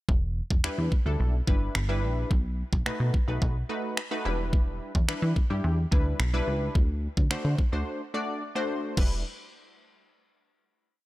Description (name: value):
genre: dance-pop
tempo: 108 BPM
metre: 4/4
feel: straight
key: E minor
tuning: A4 = 440 Hz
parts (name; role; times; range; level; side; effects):
- plucky analog bass; bass; 0.1-9.2 s; E1 to E3; -28 LUFS; equal; sidechain pumping
- pop drum kit; drums; 0.1-9.1 s; crash cymbal, finger snaps, kick drum; -26 LUFS; equal; none
- funky polysynth comp; accompaniment; 0.6-9.2 s; G3 to D5; -32 LUFS; left 1 dB; chorus, sidechain pumping
room: digital ambience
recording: dry, gritty hardware recording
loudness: -25 LUFS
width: side -17 dB against mid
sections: 0.1-9.0 verse; 9.0-11.1 final chord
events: break 7.9-9.0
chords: 0.1 Em7; 2.3 B7; 4.3 Em7; 6.8 D7; 9.0 Em7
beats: | 0.09 0.64 1.20 1.75 | 2.31 2.86 3.42 3.97 | 4.53 5.08 5.64 6.20 | 6.75 7.31 7.86 8.42 | 8.97